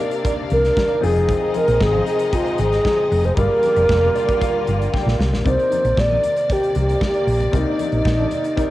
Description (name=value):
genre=disco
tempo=115 BPM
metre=4/4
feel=straight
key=C minor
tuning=A4 = 440 Hz
part: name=wooden-headed alto flute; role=melody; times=0.0-8.7 s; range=Eb4 to D5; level=-19 LUFS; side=equal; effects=plate reverb, tape echo
part: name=warm studio violin section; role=second line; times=0.0-5.4 s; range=Bb3 to F5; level=-28 LUFS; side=left 7 dB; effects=plate reverb
part: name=clean electric guitar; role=accompaniment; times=0.0-8.7 s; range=Eb4 to F5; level=-31 LUFS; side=right 9 dB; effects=wide subtle chorus, plate reverb
part: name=clear baby grand piano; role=accompaniment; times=0.0-8.7 s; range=C3 to G5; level=-30 LUFS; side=left 7 dB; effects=plate reverb
part: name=clear studio string section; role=sustained chords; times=0.0-8.7 s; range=C3 to D5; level=-29 LUFS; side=equal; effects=plate reverb
part: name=congas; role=percussion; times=0.0-8.4 s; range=none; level=-33 LUFS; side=left 6 dB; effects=none
part: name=modern studio drum kit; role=drums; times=0.1-8.7 s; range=hi-hat, kick drum, snare drum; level=-24 LUFS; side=equal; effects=cassette tape
part: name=hollow-body short-scale fingered electric bass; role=bass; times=0.5-8.2 s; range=F1 to C2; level=-20 LUFS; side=equal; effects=none
room=light reverb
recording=home recording on cassette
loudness=-16 LUFS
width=side -15 dB against mid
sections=0.0-5.5 A section; 5.5-8.7 B section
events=grand piano fill 3.9-5.5; drum fill 4.9-5.5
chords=0.0 Cm9; 1.0 Fm7; 3.4 Gm7; 5.5 Cm9